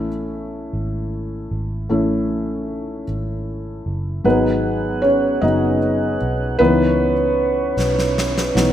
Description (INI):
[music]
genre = six-eight pop ballad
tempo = 51 BPM (dotted quarters)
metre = 6/8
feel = straight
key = unclear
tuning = A4 = 442 Hz
[part]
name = felt-muted upright piano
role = accompaniment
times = 0.0-8.7 s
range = E3 to D#5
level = -19 LUFS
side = left 1 dB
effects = none
[part]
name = vintage muted fingered electric bass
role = bass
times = 0.0-8.7 s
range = F#1 to C#2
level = -25 LUFS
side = right 1 dB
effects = none
[part]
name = mellow tonewheel organ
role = sustained chords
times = 4.2-8.7 s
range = B3 to F#5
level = -22 LUFS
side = right 4 dB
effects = slow rotary speaker
[part]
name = snare drum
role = drums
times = 7.8-8.7 s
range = none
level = -22 LUFS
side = equal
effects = none
[sound]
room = moderate lush hall reverb, RT60 2.5 s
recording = rough home demo mix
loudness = -17 LUFS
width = side -11 dB against mid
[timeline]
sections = 0.0-4.2 A section; 4.2-8.7 B section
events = felt piano solo 0.0-4.2, 4.2-8.7; drum fill 7.8-8.7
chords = 0.0 A; 4.2 G#m7; 6.6 C#m7